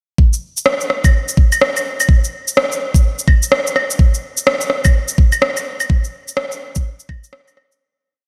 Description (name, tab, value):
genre	future garage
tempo	126 BPM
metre	4/4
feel	swing 61% on 16ths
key	none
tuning	none
part	electronic kick drum	drums	0.2-7.2 s	none	-13 LUFS	equal	studio reverb
part	electronic shaker, rim click and claves	drums	0.3-7.8 s	none	-19 LUFS	equal	studio reverb
room	moderate lush hall reverb, RT60 2.1 s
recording	dreamy mix soaked in reverb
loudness	-16 LUFS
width	mono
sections	0.2-7.8 groove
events	fade-out 5.3-7.8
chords	none